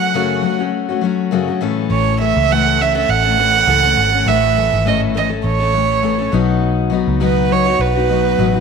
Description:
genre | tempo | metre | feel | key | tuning
acoustic pop | 102 BPM | 4/4 | swing 55% on 16ths | unclear | A4 = 440 Hz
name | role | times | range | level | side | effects
warm violin | melody | 0.0-8.6 s | B4 to F#5 | -16 LUFS | right 9 dB | none
picked steel-string acoustic guitar | accompaniment | 0.0-8.6 s | F#2 to A4 | -17 LUFS | left 8 dB | none
vintage muted fingered electric bass | bass | 1.9-8.6 s | G#1 to C#2 | -19 LUFS | right 1 dB | none
room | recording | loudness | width
wet echo chamber reverb, RT60 2.2 s | 1960s-style stereo with parts hard left and right | -13 LUFS | side -5 dB against mid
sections
0.0-8.6 A section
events
none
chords
0.0 F#m; 1.6 A; 6.3 B

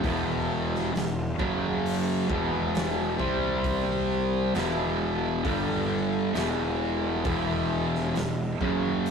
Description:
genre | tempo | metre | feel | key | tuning
stoner and doom metal | 66 BPM | 4/4 | straight | E minor | A4 = 439 Hz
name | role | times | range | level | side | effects
fuzz guitar | riff | 0.0-9.1 s | E2 to C4 | -26 LUFS | equal | distortion
fuzz picked electric bass | bass | 0.0-9.1 s | E1 to C2 | -32 LUFS | equal | overdrive
raw garage drum kit | drums | 0.0-9.1 s | hi-hat, kick drum, snare drum | -34 LUFS | equal | none
room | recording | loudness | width
light reverb | rough rehearsal-room recording, tube saturation | -25 LUFS | side -6 dB against mid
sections
0.0-9.1 A section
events
none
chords
0.0 E5; 1.4 F#5; 2.3 E5; 3.2 C5; 4.5 E5; 5.4 G5; 6.4 E5

